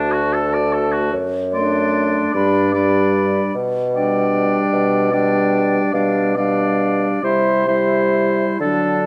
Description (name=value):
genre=classical, slow romantic movement for wind quintet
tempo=42-52 BPM (dotted quarters)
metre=6/8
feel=rubato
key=G major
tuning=A4 = 440 Hz
part: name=concert flute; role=melody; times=0.0-9.1 s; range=E5 to C6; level=-28 LUFS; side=equal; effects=none
part: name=clear oboe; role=second line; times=0.0-9.1 s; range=D4 to D5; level=-25 LUFS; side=equal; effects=none
part: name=clear clarinet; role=accompaniment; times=0.0-9.1 s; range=D4 to F#4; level=-25 LUFS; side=equal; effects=none
part: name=mellow French horn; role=accompaniment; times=0.0-9.1 s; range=F#3 to A3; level=-25 LUFS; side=equal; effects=none
part: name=mellow bassoon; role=bass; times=0.0-9.1 s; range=D2 to D3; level=-22 LUFS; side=equal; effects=none
room=moderate recital hall reverb, RT60 1.4 s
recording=none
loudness=-18 LUFS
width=mono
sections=0.0-9.1 A section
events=none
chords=0.0 D; 1.1 D7/F#; 2.3 G; 3.6 G/B; 7.2 C